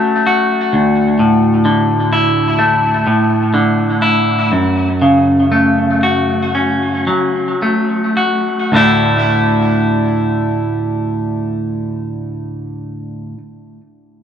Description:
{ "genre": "rock", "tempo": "52-65 BPM", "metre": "4/4", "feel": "straight", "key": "D major", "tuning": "A4 = 439 Hz", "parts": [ { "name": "clean electric guitar", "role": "arpeggios", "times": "0.0-13.4 s", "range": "D2 to F#4", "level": "-12 LUFS", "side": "equal", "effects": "spring reverb, tape echo" } ], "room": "wet small room reverb, RT60 0.5 s", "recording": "none", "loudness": "-12 LUFS", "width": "side -8 dB against mid", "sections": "0.0-8.7 A section; 8.7-13.3 B section", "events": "slowing down 0.7-8.7", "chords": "0.0 F#m; 0.7 Dsus2; 4.5 F#m; 8.7 Dsus2", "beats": "| 0.73 1.66 2.59 3.54 | 4.51 5.50 6.54 7.61 | 8.73 9.87 11.02 12.16" }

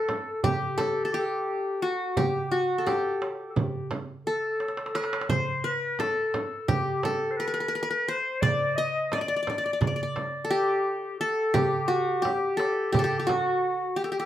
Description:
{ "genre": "Turkish makam ensemble", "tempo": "173 BPM (eighths)", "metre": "9/8", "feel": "straight", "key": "unclear", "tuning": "A4 = 439 Hz", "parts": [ { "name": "qanun", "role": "melody", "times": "0.0-14.3 s", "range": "F#4 to Eb5", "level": "-27 LUFS", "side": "equal", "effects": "none" }, { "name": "breathy clarinet", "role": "second line", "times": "0.0-14.3 s", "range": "F#4 to Eb5", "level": "-31 LUFS", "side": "left 3 dB", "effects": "none" }, { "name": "darbuka", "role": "percussion", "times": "0.1-13.4 s", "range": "none", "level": "-33 LUFS", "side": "right 3 dB", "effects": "none" }, { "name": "frame drum", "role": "percussion", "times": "0.1-13.4 s", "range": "none", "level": "-31 LUFS", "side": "right 3 dB", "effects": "none" } ], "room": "moderate studio reverb, RT60 0.6 s", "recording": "none", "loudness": "-25 LUFS", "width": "side -12 dB against mid", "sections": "0.0-14.3 A section", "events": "drum fill 4.6-5.3", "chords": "none", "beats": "0.08 0.43 0.78 1.12 1.47 1.82 | 2.17 2.52 2.86 3.21 3.56 3.91 4.25 4.60 4.95 | 5.30 5.65 5.99 6.34 6.69 7.04 7.38 7.73 8.08 | 8.43 8.77 9.12 9.47 9.81 10.16 10.51 10.86 11.20 | 11.55 11.90 12.24 12.59 12.94 13.28 13.63 13.97" }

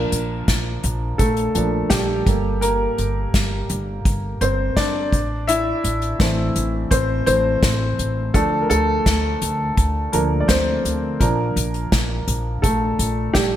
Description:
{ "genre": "piano-driven pop", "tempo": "84 BPM", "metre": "4/4", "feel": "straight", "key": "D minor", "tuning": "A4 = 439 Hz", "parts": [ { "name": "clear upright piano", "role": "accompaniment", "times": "0.0-13.6 s", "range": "E3 to E5", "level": "-21 LUFS", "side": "equal", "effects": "none" }, { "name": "upright bass", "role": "bass", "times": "0.0-13.6 s", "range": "G1 to D2", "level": "-23 LUFS", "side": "equal", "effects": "none" }, { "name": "unplugged drum kit", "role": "drums", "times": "0.1-13.5 s", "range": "hi-hat, kick drum, snare drum", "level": "-21 LUFS", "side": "equal", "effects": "gated reverb" } ], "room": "moderate plate reverb, RT60 1.9 s, studio reverb", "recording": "bright 1980s-style digital production", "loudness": "-18 LUFS", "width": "side -11 dB against mid", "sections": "0.0-13.6 A section", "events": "upright piano solo 0.0-13.6", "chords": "0.0 Bb; 2.3 Gmadd9; 5.1 Am; 8.3 Dm; 11.2 Bb", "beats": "0.48 1.20 1.91 | 2.63 3.34 4.05 4.77 | 5.49 6.20 6.92 7.63 | 8.35 9.06 9.78 10.49 | 11.21 11.92 12.63 13.35" }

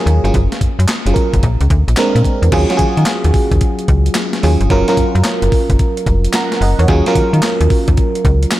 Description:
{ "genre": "R&B, new jack swing", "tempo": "110 BPM", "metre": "4/4", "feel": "swing 65% on 16ths", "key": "Eb dorian", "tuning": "A4 = 439 Hz", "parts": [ { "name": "FM electric piano", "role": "accompaniment", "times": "0.0-8.6 s", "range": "Gb3 to Bb5", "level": "-16 LUFS", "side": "right 2 dB", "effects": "chorus" }, { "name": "slap-like FM bass", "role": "bass", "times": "0.1-8.5 s", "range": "F1 to Eb3", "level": "-13 LUFS", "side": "equal", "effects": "none" }, { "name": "crisp 8-bit digital drum machine", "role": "drums", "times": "0.1-8.6 s", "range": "crash cymbal, handclaps, hi-hat, kick drum, snare drum", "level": "-16 LUFS", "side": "equal", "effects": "none" } ], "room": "light reverb", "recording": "none", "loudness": "-11 LUFS", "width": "side -15 dB against mid", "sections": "0.0-2.5 A section; 2.5-8.6 B section", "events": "none", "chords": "0.3 Gbmaj7; 1.4 Bb9; 2.5 Ebm11; 4.7 Gbmaj7; 6.9 Ebm9", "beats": "| 0.34 0.88 1.43 1.97 | 2.52 3.06 3.61 4.16 | 4.70 5.25 5.79 6.34 | 6.88 7.43 7.97 8.52" }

